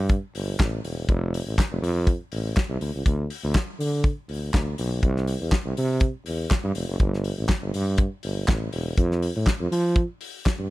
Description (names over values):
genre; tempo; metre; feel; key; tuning
disco; 122 BPM; 4/4; straight; unclear; A4 = 439 Hz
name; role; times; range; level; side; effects
warm tuba; bass; 0.0-10.7 s; E1 to F3; -25 LUFS; right 1 dB; none
damped 70s drum kit; drums; 0.1-10.6 s; handclaps, hi-hat, kick drum, snare drum; -24 LUFS; equal; none
room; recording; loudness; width
little or no reverb; none; -22 LUFS; side -18 dB against mid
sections
0.0-10.7 A section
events
none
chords
none